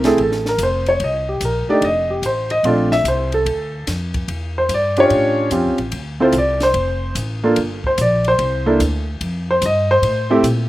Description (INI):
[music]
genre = jazz piano trio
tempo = 146 BPM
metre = 4/4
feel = swing 66% on 8ths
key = F major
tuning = A4 = 439 Hz
[part]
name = warm concert grand piano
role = melody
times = 0.0-10.4 s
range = A3 to E5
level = -16 LUFS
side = equal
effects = none
[part]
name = upright bass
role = bass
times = 0.0-10.7 s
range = F1 to Bb2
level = -22 LUFS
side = equal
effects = none
[part]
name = compact cocktail drum kit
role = drums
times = 0.0-10.6 s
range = hi-hat, kick drum, ride cymbal, snare drum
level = -29 LUFS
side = left 1 dB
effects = none
[sound]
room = little or no reverb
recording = recorded outdoors, with no room sound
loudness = -15 LUFS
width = side -16 dB against mid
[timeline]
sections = 0.0-10.7 A section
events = grand piano solo 0.0-10.7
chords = 0.0 F; 1.0 Cm9; 1.8 F; 2.6 Bbmaj9; 4.3 Em7; 5.1 A7alt; 5.9 Dm7; 7.6 Gm; 8.4 Csus2; 9.2 F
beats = 0.18 0.59 | 1.00 1.41 1.82 2.23 | 2.64 3.05 3.46 3.87 | 4.28 4.69 5.10 5.51 | 5.92 6.33 6.75 7.16 | 7.57 7.98 8.39 8.80 | 9.21 9.62 10.03 10.44